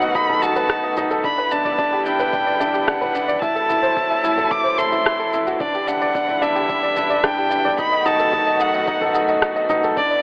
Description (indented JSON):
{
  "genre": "piano and strings electronica",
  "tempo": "110 BPM",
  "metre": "4/4",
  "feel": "straight",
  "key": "E minor",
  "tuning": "A4 = 441 Hz",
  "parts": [
    { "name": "clear violin", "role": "melody", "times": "0.0-10.2 s", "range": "D5 to D6", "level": "-24 LUFS", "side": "equal", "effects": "none" },
    { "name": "dark chamber string section", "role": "sustained chords", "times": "0.0-10.2 s", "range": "C3 to F#4", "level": "-29 LUFS", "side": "equal", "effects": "sidechain pumping" },
    { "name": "clear upright piano", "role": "riff", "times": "0.0-10.2 s", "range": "D4 to E5", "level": "-23 LUFS", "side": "equal", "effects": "none" },
    { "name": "round analog bass", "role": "bass", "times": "0.0-9.9 s", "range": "E1", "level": "-46 LUFS", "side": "equal", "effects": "tube saturation, sidechain pumping" },
    { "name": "deep house drum kit", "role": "drums", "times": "0.0-10.2 s", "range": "rim click, shaker, toms", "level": "-29 LUFS", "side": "equal", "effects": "none" },
    { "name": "electronic kick drum", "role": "drums", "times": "0.1-10.1 s", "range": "none", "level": "-37 LUFS", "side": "equal", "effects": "none" }
  ],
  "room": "light reverb, digital ambience",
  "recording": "telephone sound",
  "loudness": "-19 LUFS",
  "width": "mono",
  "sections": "0.0-10.2 A section",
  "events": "none",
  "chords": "0.0 B7/E; 1.2 Em7; 3.4 F#m7b5/E; 5.6 Em7; 7.8 B7/E",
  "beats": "0.15 0.70 | 1.24 1.79 2.33 2.88 | 3.42 3.97 4.51 5.06 | 5.61 6.15 6.70 7.24 | 7.79 8.33 8.88 9.42 | 9.97"
}